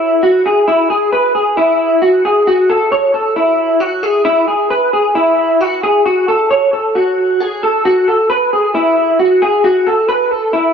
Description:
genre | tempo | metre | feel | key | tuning
indie pop | 134 BPM | 4/4 | straight | E major | A4 = 440 Hz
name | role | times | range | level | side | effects
electric guitar through a small old amp | solo | 0.0-10.7 s | E4 to C#5 | -10 LUFS | equal | ensemble chorus, tape echo
room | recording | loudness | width
moderate plate reverb, RT60 3.1 s | dark, warm production | -10 LUFS | side -7 dB against mid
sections
0.0-7.8 A section; 7.8-10.7 B section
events
none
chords
none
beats
0.22 | 0.67 1.12 1.57 2.02 | 2.47 2.92 3.36 3.81 | 4.26 4.71 5.16 5.61 | 6.05 6.50 6.95 7.40 | 7.85 8.30 8.74 9.19 | 9.64 10.09 10.53

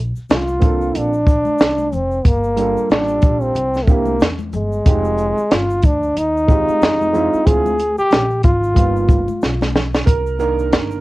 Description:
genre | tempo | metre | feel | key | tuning
hip hop, jazz-hop | 92 BPM | 4/4 | swing 58% on 16ths | C minor | A4 = 441 Hz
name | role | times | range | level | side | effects
upright bass | bass | 0.0-11.0 s | F1 to F2 | -23 LUFS | equal | none
tube shaker and congas | percussion | 0.2-11.0 s | none | -32 LUFS | left 7 dB | none
warm trombone | melody | 0.3-9.7 s | Ab3 to Ab4 | -18 LUFS | equal | none
compact cocktail drum kit | drums | 0.3-10.9 s | hi-hat, kick drum, shaker, snare drum | -14 LUFS | equal | cassette tape
dark grand piano | accompaniment | 0.6-11.0 s | Eb3 to Bb4 | -22 LUFS | right 5 dB | cassette tape
room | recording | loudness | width
light reverb | home recording on cassette | -14 LUFS | side -19 dB against mid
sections
0.0-10.1 A section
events
drum fill 9.4-10.1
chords
0.0 Bbmaj7; 2.2 Gm7; 3.6 C7; 4.9 Fm9; 7.5 Dm7b5; 8.8 G7alt; 10.1 Cm7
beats
0.29 0.94 1.60 | 2.25 2.90 3.55 4.21 | 4.86 5.51 6.16 6.82 | 7.47 8.12 8.77 9.42 | 10.07 10.73

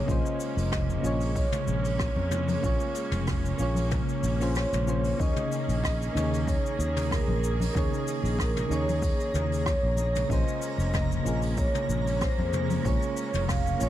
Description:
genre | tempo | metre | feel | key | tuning
sunset chillout | 94 BPM | 4/4 | swing 54% on 16ths | Bb minor | A4 = 440 Hz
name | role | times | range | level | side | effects
vibraphone with soft mallets | melody | 0.0-13.9 s | Ab4 to F5 | -33 LUFS | right 1 dB | digital delay
soft electric-piano-like synth keys | accompaniment | 0.0-13.9 s | Bb3 to Db5 | -34 LUFS | moving between left 5 dB and right 5 dB | chorus, auto-pan, digital delay
clear symphonic string section | sustained chords | 0.0-13.9 s | Eb3 to Ab4 | -36 LUFS | right 1 dB | none
sustaining fretless electric bass | bass | 0.1-13.9 s | F1 to F2 | -29 LUFS | equal | none
electronic kick drum | drums | 0.1-13.6 s | none | -30 LUFS | equal | none
jazz brush drum kit | drums | 0.1-13.9 s | cabasa, hi-hat, rim click, toms | -33 LUFS | left 1 dB | none
congas | percussion | 1.7-13.9 s | none | -36 LUFS | left 2 dB | none
twinkling granular texture | texture | 5.6-13.9 s | Bb5 | -43 LUFS | equal | built-in reverb
room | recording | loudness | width
little or no reverb | dark, warm production | -25 LUFS | side -12 dB against mid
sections
0.0-13.9 A section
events
kick drops out 4.6-5.2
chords
0.1 Bbm9; 5.2 Eb7sus4; 10.3 Bbm9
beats
| 0.09 0.72 1.36 2.00 | 2.64 3.28 3.92 4.55 | 5.19 5.83 6.47 7.11 | 7.75 8.38 9.02 9.66 | 10.30 10.94 11.57 12.21 | 12.85 13.49

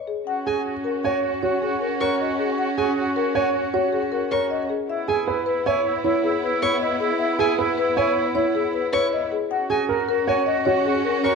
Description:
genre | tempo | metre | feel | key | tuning
classical, minimalist pattern music | 156 BPM | 6/4 | straight | unclear | A4 = 443 Hz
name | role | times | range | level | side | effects
marimba with medium mallets | melody | 0.0-11.3 s | G#4 to G#5 | -24 LUFS | left 7 dB | none
clear oboe | second line | 0.3-11.3 s | E4 to F#4 | -29 LUFS | right 3 dB | none
bright studio violin section | sustained chords | 0.3-11.3 s | B3 to F#4 | -27 LUFS | right 1 dB | none
rich violin | arpeggios | 0.5-11.3 s | G#5 to C#6 | -32 LUFS | left 1 dB | none
warm concert grand piano | arpeggios | 0.5-11.3 s | E4 to C#5 | -24 LUFS | right 6 dB | none
room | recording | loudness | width
moderate recital hall reverb, RT60 1.4 s | dark, warm production | -20 LUFS | side -5 dB against mid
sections
0.3-11.3 A section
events
none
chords
0.3 D#m7 (rootless); 4.9 C#m7; 9.5 D#m7 (rootless)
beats
| 0.28 0.66 1.04 1.43 1.81 2.20 | 2.58 2.97 3.35 3.74 4.12 4.51 | 4.89 5.28 5.66 6.04 6.43 6.82 | 7.20 7.58 7.97 8.35 8.74 9.12 | 9.51 9.89 10.28 10.66 11.04

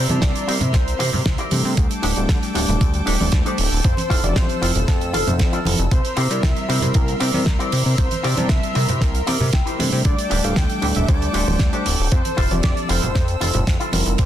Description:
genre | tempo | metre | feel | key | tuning
nu-disco, nu disco | 116 BPM | 4/4 | straight | C mixolydian | A4 = 437 Hz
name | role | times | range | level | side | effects
wide unison lead | melody | 0.0-14.3 s | A4 to G5 | -28 LUFS | equal | digital delay
lush unison pad | sustained chords | 0.0-14.3 s | A4 to E6 | -31 LUFS | equal | chorus, sidechain pumping
electric guitar with an envelope filter | riff | 0.0-14.1 s | D4 to G5 | -27 LUFS | left 1 dB | lush chorus
chorused synth bass | bass | 0.0-14.3 s | D1 to C3 | -22 LUFS | equal | tube saturation
tine electric piano | accompaniment | 0.1-14.3 s | F3 to A5 | -26 LUFS | left 1 dB | none
damped 70s drum kit | drums | 0.1-14.3 s | crash cymbal, hi-hat, snare drum | -25 LUFS | right 3 dB | small room reverb
congas | percussion | 0.1-14.0 s | none | -27 LUFS | right 2 dB | none
electronic kick drum | drums | 0.2-14.3 s | none | -19 LUFS | equal | small room reverb
room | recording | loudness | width
little or no reverb | dense, heavily limited modern master | -17 LUFS | side -11 dB against mid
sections
0.0-14.3 A section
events
clean electric guitar fill 9.0-10.1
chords
0.0 C7; 1.8 Dsus4; 3.8 Fmaj7; 5.9 C7; 10.1 Dsus4; 12.1 Fmaj7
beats
0.22 0.74 1.26 | 1.78 2.29 2.81 3.33 | 3.85 4.36 4.88 5.40 | 5.91 6.43 6.95 7.47 | 7.98 8.50 9.02 9.54 | 10.05 10.57 11.09 11.60 | 12.12 12.64 13.15 13.67 | 14.19

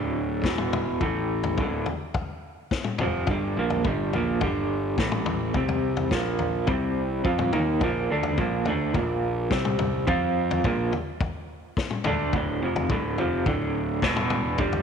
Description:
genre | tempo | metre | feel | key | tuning
psychedelic rock | 106 BPM | 4/4 | straight | D minor | A4 = 442 Hz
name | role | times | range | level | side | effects
electric guitar through a small old amp | riff | 0.0-14.8 s | D2 to F4 | -26 LUFS | right 1 dB | tremolo
fuzz picked electric bass | bass | 0.0-14.8 s | D1 to F2 | -30 LUFS | right 1 dB | overdrive
vintage drum kit | drums | 0.4-14.8 s | kick drum, snare drum, toms | -28 LUFS | left 3 dB | none
room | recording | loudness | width
moderate echo chamber reverb, RT60 2.3 s | 1960s-style stereo | -23 LUFS | side -7 dB against mid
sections
0.0-14.8 A section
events
none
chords
0.4 E5; 1.0 A5; 1.6 Dm; 3.3 G5; 5.0 A5; 5.6 C5; 6.1 Bb5; 6.7 C5; 7.3 Ebsus2; 7.8 Bbmaj7; 9.0 Bb5; 9.5 C5; 10.1 F5; 10.6 Bbmaj7; 12.3 Dm; 14.0 E5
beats
0.45 | 1.02 1.58 2.15 2.72 | 3.29 3.85 4.42 4.99 | 5.56 6.12 6.69 7.25 | 7.82 8.39 8.95 9.52 | 10.08 10.65 11.21 11.78 | 12.34 12.90 13.47 14.03 | 14.60

